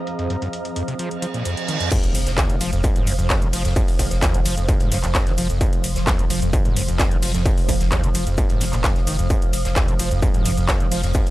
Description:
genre	driving peak-time techno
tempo	130 BPM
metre	4/4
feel	straight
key	F minor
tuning	A4 = 440 Hz
part	swarming drone	drone	0.0-11.3 s	F3	-29 LUFS	right 2 dB	built-in reverb, sidechain pumping
part	airy breathy pad	texture	0.0-1.9 s	C4 to Bb5	-32 LUFS	right 1 dB	chorus, sidechain pumping
part	techno drum kit	drums	0.1-11.3 s	crash cymbal, handclaps, hi-hat, ride cymbal, shaker	-26 LUFS	equal	sidechain pumping on hats, small room reverb, sidechain pumping on cymbals, sidechain pumping on perc
part	screaming distorted acid line	riff	0.2-11.2 s	Eb2 to F3	-26 LUFS	equal	distortion, chorus, sidechain pumping, analog delay
part	reverse cymbal and impact	sound effects	1.2-3.8 s	none	-29 LUFS	right 2 dB	none
part	electronic kick drum	drums	1.9-11.2 s	none	-20 LUFS	equal	distortion, small room reverb
part	loose indie drum kit	drums	1.9-11.3 s	hi-hat, shaker, snare drum	-36 LUFS	left 1 dB	none
part	saturated sub bass	bass	2.0-11.3 s	F1	-24 LUFS	equal	overdrive, sidechain pumping, low-pass filter
room	little or no reverb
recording	low-pass filter, lossy compression artefacts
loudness	-18 LUFS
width	side -17 dB against mid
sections	0.0-1.9 A section; 1.9-11.3 B section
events	filter sweep on acid bass 0.0-1.9; filter sweep 0.0-1.9; reverse cymbal 1.2-1.9; drop 1.9-11.3; impact 1.9-3.8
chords	0.0 Fm; 1.9 N.C.

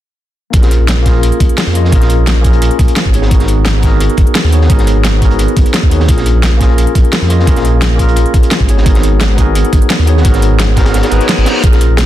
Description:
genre	liquid drum and bass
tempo	173 BPM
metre	4/4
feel	straight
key	Bb phrygian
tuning	A4 = 440 Hz
part	bright tine electric piano	accompaniment	0.5-12.1 s	Bb3 to Eb5	-15 LUFS	equal	fast stereo tremolo, low-pass filter, ping-pong delay
part	swelling detuned saw bass	bass	0.5-12.1 s	Ab1 to F2	-11 LUFS	equal	none
part	crunchy breakbeat drum kit	drums	0.5-12.1 s	hi-hat, snare drum	-22 LUFS	equal	high-pass filter on hats, high-pass filter on snare, high-pass filter on room
part	electronic kick drum	drums	0.5-11.7 s	none	-10 LUFS	equal	none
part	pop drum kit	drums	0.5-12.1 s	hi-hat, snare drum	-17 LUFS	equal	none
part	reverse cymbal	sound effects	11.1-11.6 s	none	-19 LUFS	equal	none
room	small room ambience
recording	dense, heavily limited modern master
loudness	-8 LUFS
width	side -13 dB against mid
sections	0.5-12.1 A section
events	filter sweep on tine electric piano 0.5-12.1; kick drops out 10.9-11.6; reverse cymbal 11.1-11.6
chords	0.5 Bbm7; 3.1 Abm7; 6.1 Bbm7; 8.7 Abm7

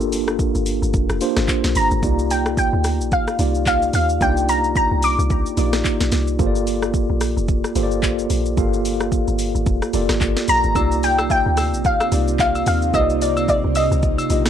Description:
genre	amapiano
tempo	110 BPM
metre	4/4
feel	swing 58% on 16ths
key	unclear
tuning	A4 = 440 Hz
part	mellow tine electric piano	accompaniment	0.0-14.5 s	Bb3 to F5	-22 LUFS	right 1 dB	medium stereo tremolo
part	deep log drum bass	bass	0.0-14.5 s	F1 to Eb2	-22 LUFS	equal	none
part	afro-pop drum kit	drums	0.0-14.5 s	handclaps, hi-hat, kick drum, rim click, shaker, snare drum	-23 LUFS	equal	none
part	glassy wavetable pluck	melody	1.8-6.1, 10.5-14.5 s	D5 to D6	-20 LUFS	equal	chorus, analog delay
part	ethereal airy pad	sustained chords	11.3-14.5 s	C3 to F4	-28 LUFS	equal	ensemble chorus, built-in reverb, sidechain pumping
part	agogo bells and woodblock	percussion	10.8-14.3 s	none	-29 LUFS	left 2 dB	none
room	little or no reverb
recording	dry, gritty hardware recording, cassette tape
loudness	-16 LUFS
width	side -9 dB against mid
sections	0.0-14.5 A section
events	none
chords	0.0 Gm9; 2.0 Cm11; 6.4 Gm9; 10.8 Cm11

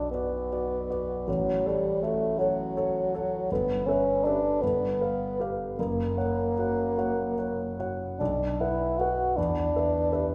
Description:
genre	classical, romantic duo for bassoon and grand piano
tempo	48-55 BPM (dotted quarters)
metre	6/8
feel	rubato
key	unclear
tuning	A4 = 439 Hz
part	dark bassoon	melody	0.0-10.3 s	F#3 to F#4	-30 LUFS	equal	none
part	warm concert grand piano	accompaniment	0.0-10.3 s	F#1 to F#5	-32 LUFS	equal	none
room	wet recital hall reverb, RT60 1.4 s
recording	recorded in a church or concert hall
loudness	-28 LUFS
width	mono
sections	0.0-10.3 A section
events	none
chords	0.0 Bm; 1.3 F#m/A; 3.5 Em/G; 4.6 G7; 5.8 F#; 8.2 B5; 9.4 Em7

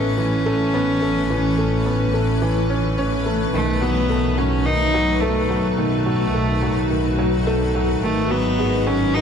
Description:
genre	piano and strings electronica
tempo	107 BPM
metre	4/4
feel	straight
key	unclear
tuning	A4 = 442 Hz
part	rich cello	melody	0.0-9.2 s	A3 to D#4	-22 LUFS	equal	ping-pong delay
part	granular cloud pad	sustained chords	0.0-9.2 s	E3 to B4	-24 LUFS	left 2 dB	built-in reverb
part	felt-muted upright piano	riff	0.0-9.2 s	D#3 to C#4	-23 LUFS	right 1 dB	ping-pong delay
part	rich studio double bass section	bass	0.0-9.2 s	G#1 to B1	-23 LUFS	equal	tube saturation
room	light reverb, studio ambience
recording	none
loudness	-17 LUFS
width	side -7 dB against mid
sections	0.0-9.2 A section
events	none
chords	0.0 Aadd9; 3.5 B7; 8.0 G#m7

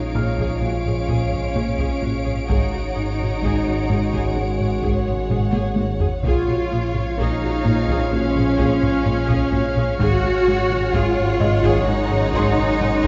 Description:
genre	cinematic, suspense film score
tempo	64 BPM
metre	4/4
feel	straight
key	Bb minor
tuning	A4 = 439 Hz
part	warm symphonic violin section	melody	0.0-13.1 s	F5 to Gb5	-37 LUFS	equal	none
part	warm symphonic violin section	second line	0.0-13.1 s	Db5	-32 LUFS	equal	none
part	bright trombone section	sustained chords	0.0-13.1 s	Eb3 to Ab3	-35 LUFS	equal	none
part	dark French horn section	sustained chords	0.0-13.1 s	Gb3 to Gb4	-32 LUFS	equal	none
part	glass harmonica	sustained chords	0.0-13.1 s	Ab4 to Ab5	-35 LUFS	equal	none
part	rich symphonic cello section	bass	0.0-13.1 s	Ab3 to Gb4	-26 LUFS	equal	none
part	saturated sub bass	drone	0.0-13.1 s	Ab1 to Bb1	-30 LUFS	equal	none
part	felt-muted upright piano	texture	0.0-13.1 s	Ab4 to F6	-34 LUFS	equal	none
part	warm symphonic violin section	texture	0.0-13.1 s	Db5 to D7	-36 LUFS	equal	none
part	plucky analog bass	riff	0.1-13.1 s	Ab2 to Bb3	-29 LUFS	equal	none
part	taiko ensemble	drums	0.1-13.1 s	none	-28 LUFS	equal	none
part	warm symphonic viola section	accompaniment	0.2-13.1 s	F4 to Ab4	-34 LUFS	equal	none
part	warm symphonic double bass section	bass	0.2-13.1 s	Ab1 to Bb1	-29 LUFS	equal	none
room	moderate scoring stage reverb, RT60 1.9 s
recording	dark, warm production, nothing above 7.7 kHz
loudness	-20 LUFS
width	mono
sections	0.0-13.1 A section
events	drum fill 5.3-6.3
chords	0.0 Bbm7; 2.5 Ab7sus4; 6.3 Bbm7; 10.0 Ab7sus4

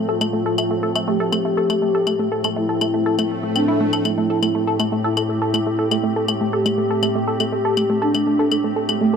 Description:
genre	melodic techno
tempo	121 BPM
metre	4/4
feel	straight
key	A minor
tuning	A4 = 440 Hz
part	expressive synth lead	melody	0.0-9.2 s	A3 to G4	-21 LUFS	left 1 dB	lush chorus, digital delay
part	evolving wavetable pad	sustained chords	0.0-9.2 s	A2 to G4	-25 LUFS	equal	chorus, built-in reverb
part	tight sequenced synth	arpeggios	0.0-9.2 s	A3 to A4	-22 LUFS	right 1 dB	chorus, ping-pong delay
part	claves	drums	0.2-9.0 s	none	-25 LUFS	left 7 dB	none
part	swell	sound effects	3.3-4.1 s	none	-29 LUFS	right 1 dB	none
room	moderate huge ambient reverb, RT60 4.3 s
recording	none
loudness	-17 LUFS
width	side -6 dB against mid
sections	0.0-9.2 A section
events	filter sweep on analog synth lead 0.0-9.2; filter sweep on ambient pad 0.0-9.2; swell 3.3-4.1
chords	0.0 F/A; 4.1 Am7

